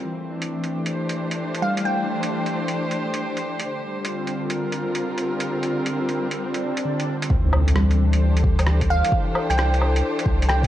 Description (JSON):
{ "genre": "future garage", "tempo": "132 BPM", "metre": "4/4", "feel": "swing 65% on 16ths", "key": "unclear", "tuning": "A4 = 443 Hz", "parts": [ { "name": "rich studio string section", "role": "sustained chords", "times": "0.0-10.7 s", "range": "D3 to C5", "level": "-25 LUFS", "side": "left 1 dB", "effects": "sidechain pumping" }, { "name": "lo-fi sampler-style drum kit", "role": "drums", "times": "0.4-10.7 s", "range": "hi-hat, rim click, woodblock", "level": "-28 LUFS", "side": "right 1 dB", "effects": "overdrive" }, { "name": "glassy wavetable pluck", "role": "melody", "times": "1.6-2.5, 8.9-10.7 s", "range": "F5 to G5", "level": "-25 LUFS", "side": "right 1 dB", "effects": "chorus, analog delay" }, { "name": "muted felt-like synth keys", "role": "accompaniment", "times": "1.6-2.0, 6.8-9.1 s", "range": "D3 to G3", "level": "-29 LUFS", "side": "left 1 dB", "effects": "chorus, sidechain pumping, tape echo" }, { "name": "swell and impact", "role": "sound effects", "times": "6.5-9.1 s", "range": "none", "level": "-29 LUFS", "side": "equal", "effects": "none" }, { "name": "warm sub bass", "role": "bass", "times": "7.3-10.7 s", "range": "C2 to D2", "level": "-19 LUFS", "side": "equal", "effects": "sidechain pumping" }, { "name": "electronic kick drum", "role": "drums", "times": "7.3-10.7 s", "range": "none", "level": "-22 LUFS", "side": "equal", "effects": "overdrive" } ], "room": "moderate lush hall reverb, RT60 1.9 s", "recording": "cassette tape", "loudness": "-20 LUFS", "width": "side -12 dB against mid", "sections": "0.0-7.3 A section; 7.3-10.7 B section", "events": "swell 6.5-7.3; impact 7.3-9.1", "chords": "0.0 C; 3.7 Bbadd9; 7.3 D5; 9.1 C" }